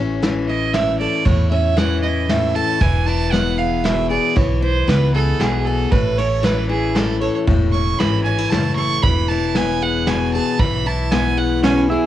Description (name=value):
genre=honky-tonk and classic country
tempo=116 BPM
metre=3/4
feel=straight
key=A major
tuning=A4 = 440 Hz
part: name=picked steel-string acoustic guitar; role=accompaniment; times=0.0-12.1 s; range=A2 to A4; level=-21 LUFS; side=left 6 dB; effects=none
part: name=upright bass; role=bass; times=0.0-11.9 s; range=E1 to E2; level=-21 LUFS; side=right 1 dB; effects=none
part: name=soft brush drum kit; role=drums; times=0.2-11.8 s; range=kick drum, ride cymbal, snare drum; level=-22 LUFS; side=right 1 dB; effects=cassette tape
part: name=clear fiddle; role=second line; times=0.5-11.8 s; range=G#4 to C#6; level=-22 LUFS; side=right 6 dB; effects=none
part: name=pedal steel guitar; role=melody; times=11.6-12.1 s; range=C#4 to E4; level=-16 LUFS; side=right 2 dB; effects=none
room=moderate booth ambience, RT60 0.2 s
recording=home recording on cassette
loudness=-15 LUFS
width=side -12 dB against mid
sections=0.0-12.1 A section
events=fiddle solo 0.0-12.1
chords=0.0 A; 2.8 E; 5.9 A; 9.0 E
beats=0.22 0.74 | 1.26 1.78 2.29 | 2.81 3.33 3.85 | 4.37 4.89 5.41 | 5.93 6.44 6.96 | 7.48 8.00 8.52 | 9.04 9.56 10.08 | 10.60 11.11 11.63